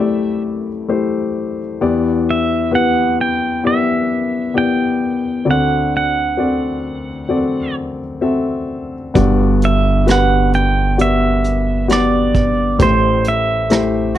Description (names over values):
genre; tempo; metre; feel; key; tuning
acoustic folk-pop ballad; 66 BPM; 4/4; straight; G major; A4 = 440 Hz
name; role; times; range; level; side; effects
pedal steel guitar; melody; 0.0-14.2 s; C5 to G5; -18 LUFS; right 4 dB; none
warm grand piano; accompaniment; 0.0-14.2 s; G1 to E5; -16 LUFS; left 4 dB; none
upright bass; bass; 9.2-14.2 s; G1 to A1; -18 LUFS; right 2 dB; none
soft brush drum kit; drums; 9.2-14.2 s; hi-hat, kick drum, rim click; -19 LUFS; right 2 dB; none
room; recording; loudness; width
light reverb; dark, warm production; -14 LUFS; side -12 dB against mid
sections
0.0-9.2 A section; 9.2-14.2 A section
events
none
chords
0.0 Am7; 1.8 Em7; 5.5 D7; 9.2 Gmaj7; 12.8 Am7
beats
0.90 | 1.81 2.72 3.63 4.54 | 5.46 6.38 7.30 8.23 | 9.15 10.07 10.99 11.90 | 12.80 13.71